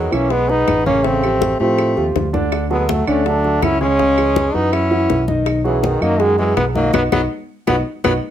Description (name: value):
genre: Afro-Cuban jazz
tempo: 163 BPM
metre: 4/4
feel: straight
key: unclear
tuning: A4 = 439 Hz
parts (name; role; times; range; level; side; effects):
- brilliant trombone; melody; 0.0-8.1 s; D#3 to E4; -18 LUFS; equal; none
- bright tenor saxophone; second line; 0.0-8.1 s; B2 to C#4; -24 LUFS; left 4 dB; none
- warm concert grand piano; accompaniment; 0.0-8.2 s; C#3 to E5; -20 LUFS; right 2 dB; none
- fingered electric bass; bass; 0.0-8.2 s; A1 to A2; -22 LUFS; equal; none
- claves; percussion; 0.1-8.1 s; none; -31 LUFS; right 7 dB; none
- congas; percussion; 0.1-8.1 s; none; -25 LUFS; left 2 dB; none
- bongos; percussion; 0.3-8.1 s; none; -26 LUFS; left 9 dB; none
room: moderate studio reverb, RT60 0.6 s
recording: none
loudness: -14 LUFS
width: side -10 dB against mid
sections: 0.0-8.3 A section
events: band accent 6.9-8.3; drum fill 7.5-8.3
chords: 0.0 Emaj7; 1.0 A7alt; 2.5 Dmaj7; 4.0 C#m; 4.7 F#5; 5.5 B6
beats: 0.31 0.68 | 1.04 1.41 1.78 2.15 | 2.52 2.89 3.25 3.62 | 3.99 4.36 4.73 5.10 | 5.46 5.83 6.20 6.57 | 6.94 7.31 7.67 8.04